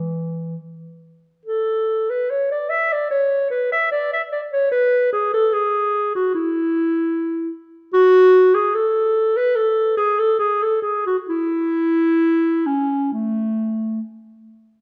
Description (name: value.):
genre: classical, baroque-style fantasia for unaccompanied clarinet.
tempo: 73 BPM.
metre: 4/4.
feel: uneven beats, rubato.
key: A major.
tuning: A4 = 440 Hz.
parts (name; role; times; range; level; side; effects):
mellow clarinet; solo; 0.0-14.0 s; E3 to E5; -19 LUFS; equal; none.
room: moderate recital hall reverb, RT60 1.7 s.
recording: dark, warm production.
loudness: -19 LUFS.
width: mono.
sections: 0.0-14.8 A section.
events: none.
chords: none.